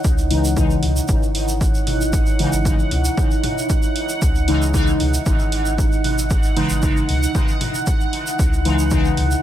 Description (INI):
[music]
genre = dub techno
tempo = 115 BPM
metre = 4/4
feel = straight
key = C# minor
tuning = A4 = 440 Hz
[part]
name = deep dark ambient pad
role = sustained chords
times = 0.0-9.4 s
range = D#4 to F#5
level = -26 LUFS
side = right 3 dB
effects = chorus, built-in reverb, sidechain pumping
[part]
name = soft dub sub bass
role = bass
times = 0.0-9.4 s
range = G#1 to C#2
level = -22 LUFS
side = equal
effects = sidechain pumping
[part]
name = electronic kick drum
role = drums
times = 0.0-9.0 s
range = none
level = -19 LUFS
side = equal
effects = none
[part]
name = tube shaker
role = percussion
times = 0.0-9.4 s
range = none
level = -29 LUFS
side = right 3 dB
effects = none
[part]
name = bubbling stepped-filter texture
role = texture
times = 0.0-9.4 s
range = F#5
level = -29 LUFS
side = right 3 dB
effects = chorus, built-in reverb, sidechain pumping
[part]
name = resonant sweep polysynth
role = stabs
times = 0.3-9.1 s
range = C#3 to D#4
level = -23 LUFS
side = left 2 dB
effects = chorus, phaser, sidechain pumping, dub echo
[part]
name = electronic hi-hat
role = drums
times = 0.3-9.3 s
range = none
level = -29 LUFS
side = right 2 dB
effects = none
[part]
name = electronic congas and toms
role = percussion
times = 0.8-9.3 s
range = none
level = -32 LUFS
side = left 3 dB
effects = sidechain pumping on perc, sidechain pumping on toms, dub echo
[sound]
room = digital ambience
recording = none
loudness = -16 LUFS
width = side -12 dB against mid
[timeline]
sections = 0.0-9.4 A section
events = none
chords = 0.0 C#madd9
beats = | 0.04 0.57 1.09 1.61 | 2.13 2.65 3.17 3.70 | 4.22 4.74 5.26 5.78 | 6.31 6.83 7.35 7.87 | 8.39 8.91